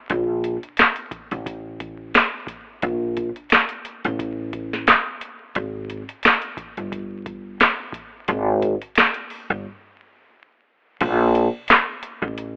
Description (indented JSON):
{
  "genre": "hip hop, boom-bap hip-hop",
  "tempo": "88 BPM",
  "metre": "4/4",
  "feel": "swing 56% on 16ths",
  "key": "unclear",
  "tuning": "A4 = 441 Hz",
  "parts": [
    { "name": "upright bass", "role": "bass", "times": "0.1-12.6 s", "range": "G1 to Bb1", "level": "-26 LUFS", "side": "equal", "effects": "tube saturation" },
    { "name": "booming analog drum machine", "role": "drums", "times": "0.1-12.6 s", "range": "crash cymbal, handclaps, hi-hat, kick drum, snare drum", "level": "-22 LUFS", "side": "equal", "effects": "vintage 12-bit sampler grit" }
  ],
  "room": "digital ambience",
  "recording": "dry, gritty hardware recording, vinyl crackle, telephone sound",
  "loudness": "-21 LUFS",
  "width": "mono",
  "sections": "0.0-11.0 A section; 11.0-12.6 B section",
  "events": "break 9.6-11.0",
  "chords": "none",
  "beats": "| 0.10 0.78 1.46 2.15 | 2.83 3.51 4.19 4.87 | 5.55 6.24 6.92 7.60 | 8.28 8.96 9.65 10.33 | 11.01 11.69 12.37"
}